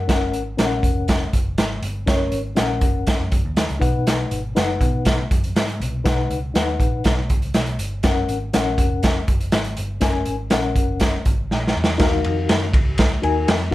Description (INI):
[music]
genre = uptempo 1960s-style soul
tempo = 121 BPM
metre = 4/4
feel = straight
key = unclear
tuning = A4 = 440 Hz
[part]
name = mellow reed electric piano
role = accompaniment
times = 0.0-13.7 s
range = B2 to Ab5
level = -24 LUFS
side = left 4 dB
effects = fast tremolo
[part]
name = vintage muted picked electric bass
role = bass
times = 0.0-13.7 s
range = F1 to B2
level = -25 LUFS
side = equal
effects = none
[part]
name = raw garage drum kit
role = drums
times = 0.1-13.6 s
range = hi-hat, kick drum, ride cymbal, snare drum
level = -19 LUFS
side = equal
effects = none
[sound]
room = light reverb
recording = none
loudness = -18 LUFS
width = side -16 dB against mid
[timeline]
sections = 0.0-12.0 A section; 12.0-13.7 B section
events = drum fill 11.5-12.0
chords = 0.1 Gb; 3.8 B; 8.0 Gb; 12.0 Ebmadd9